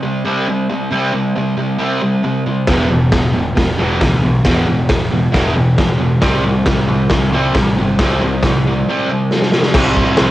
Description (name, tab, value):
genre	garage rock duo or trio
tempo	136 BPM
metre	4/4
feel	straight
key	unclear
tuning	A4 = 444 Hz
part	fuzz guitar	riff	0.0-10.3 s	E2 to C4	-15 LUFS	equal	distortion, cassette tape
part	growling picked electric bass	bass	2.7-10.3 s	E1 to D2	-20 LUFS	equal	overdrive
part	raw garage drum kit	drums	2.7-10.3 s	crash cymbal, hi-hat, kick drum, snare drum	-16 LUFS	equal	none
room	light reverb, small room reverb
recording	home recording on cassette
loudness	-12 LUFS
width	side -15 dB against mid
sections	0.0-9.8 A section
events	drum fill 9.3-9.8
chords	0.0 C5; 2.7 E5; 6.2 C5